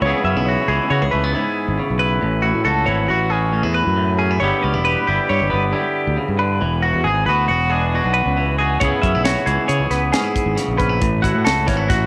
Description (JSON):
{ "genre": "math rock and midwest emo", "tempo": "137 BPM", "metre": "5/4", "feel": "straight", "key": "A major", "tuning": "A4 = 442 Hz", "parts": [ { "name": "twangy electric guitar", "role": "accompaniment", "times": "0.0-12.1 s", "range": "G2 to G#4", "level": "-23 LUFS", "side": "equal", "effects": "cassette tape" }, { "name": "twelve-string electric guitar", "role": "arpeggios", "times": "0.0-12.1 s", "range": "F#4 to E5", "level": "-23 LUFS", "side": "equal", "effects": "spring reverb, cassette tape" }, { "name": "fuzz fingered electric bass", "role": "bass", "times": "0.0-12.1 s", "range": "E1 to C#3", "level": "-23 LUFS", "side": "equal", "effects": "overdrive" }, { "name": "crisp fusion drum kit", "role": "drums", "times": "8.8-12.0 s", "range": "hi-hat, kick drum, snare drum", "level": "-25 LUFS", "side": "equal", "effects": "cassette tape" } ], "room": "little or no reverb", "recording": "home recording on cassette", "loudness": "-18 LUFS", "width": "mono", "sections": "0.0-12.1 A section", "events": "none", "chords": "0.0 Amaj9; 4.4 G6; 6.6 E9; 8.8 C#m7; 11.0 Amaj9" }